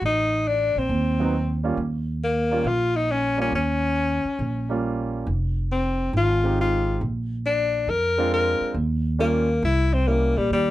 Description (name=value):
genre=jazz, small-group swing and bop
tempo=137 BPM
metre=4/4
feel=swing 68% on 8ths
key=Eb mixolydian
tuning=A4 = 439 Hz
part: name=upright bass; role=bass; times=0.0-10.7 s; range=F1 to Bb2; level=-24 LUFS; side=right 1 dB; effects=none
part: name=breathy tenor saxophone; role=melody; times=0.1-10.7 s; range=G3 to Bb4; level=-22 LUFS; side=left 2 dB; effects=none
part: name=warm grand piano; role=accompaniment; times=1.2-10.3 s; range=F#3 to G4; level=-28 LUFS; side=right 4 dB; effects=none
room=light reverb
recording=none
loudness=-21 LUFS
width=side -15 dB against mid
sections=0.0-10.7 A section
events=none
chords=0.0 Adim; 1.8 Eb9; 5.3 Fm7; 7.0 Bb9; 8.8 Eb9; 9.6 C7b9